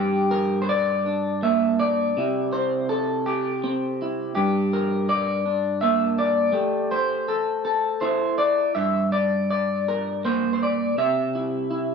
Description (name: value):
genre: folk, solo fingerstyle acoustic guitar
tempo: 54 BPM (dotted quarters)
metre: 6/8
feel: straight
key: G dorian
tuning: A4 = 440 Hz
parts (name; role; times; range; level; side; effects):
- electric guitar through a small old amp; solo; 0.0-11.9 s; G2 to E5; -21 LUFS; equal; lush chorus
room: moderate large studio reverb, RT60 1.3 s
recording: close, detailed microphones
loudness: -21 LUFS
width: side -5 dB against mid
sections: 0.0-11.9 A section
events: none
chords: 0.0 Gm; 2.2 C; 4.3 Gm; 6.5 Am7; 8.8 Gm; 11.0 C